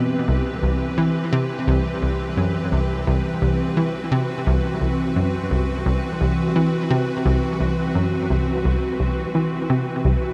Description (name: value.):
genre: ambient, sequencer-driven space music.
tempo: 86 BPM.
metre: 4/4.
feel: straight.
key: C lydian.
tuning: A4 = 440 Hz.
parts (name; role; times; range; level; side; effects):
evolving wavetable pad; sustained chords; 0.0-10.3 s; E3 to B4; -26 LUFS; equal; ensemble chorus, built-in reverb.
hollow square pluck; riff; 0.0-10.2 s; C2 to E3; -23 LUFS; equal; chorus, tape echo.
room: wet huge ambient reverb, RT60 8.1 s.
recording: dark, warm production.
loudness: -21 LUFS.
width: mono.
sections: 0.0-10.3 A section.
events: none.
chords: 0.0 Cmaj7.